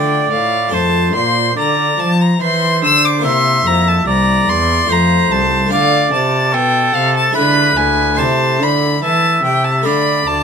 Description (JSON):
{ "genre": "classical, baroque-style sonata movement with continuo", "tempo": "72 BPM", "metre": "3/4", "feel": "rubato", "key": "A minor from 5.7 s", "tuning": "A4 = 440 Hz", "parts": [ { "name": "rich violin", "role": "melody", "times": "0.0-10.4 s", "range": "F5 to E6", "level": "-16 LUFS", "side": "left 5 dB", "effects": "none" }, { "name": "clear oboe", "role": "second line", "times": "0.0-10.4 s", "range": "A4 to E5", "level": "-16 LUFS", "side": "right 5 dB", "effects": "none" }, { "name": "harpsichord", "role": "accompaniment", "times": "0.0-10.4 s", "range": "C2 to F5", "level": "-21 LUFS", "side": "left 3 dB", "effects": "none" }, { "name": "warm cello", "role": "bass", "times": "0.0-10.4 s", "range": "C2 to F3", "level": "-17 LUFS", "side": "right 1 dB", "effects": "none" } ], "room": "moderate studio reverb, RT60 0.5 s", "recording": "minimal, uncompressed stereo recording", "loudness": "-11 LUFS", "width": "side -6 dB against mid", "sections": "0.0-10.4 A section", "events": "none", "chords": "0.0 Dm; 0.7 F; 3.2 C7; 4.9 F; 5.7 Dm; 7.4 E7/D; 8.2 Am/C; 9.9 Dm" }